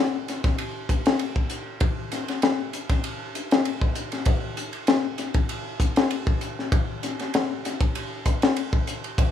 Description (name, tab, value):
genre	jazz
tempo	98 BPM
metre	4/4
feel	swing 53% on 16ths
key	none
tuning	none
part	crisp fusion drum kit	drums	0.3-9.3 s	hi-hat, kick drum, ride cymbal, snare drum	-22 LUFS	left 2 dB	none
room	light reverb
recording	none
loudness	-23 LUFS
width	side -10 dB against mid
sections	0.0-9.3 A section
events	none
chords	none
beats	0.58 1.20 | 1.81 2.42 3.04 3.65 | 4.26 4.88 5.49 6.11 | 6.72 7.33 7.95 8.56 | 9.18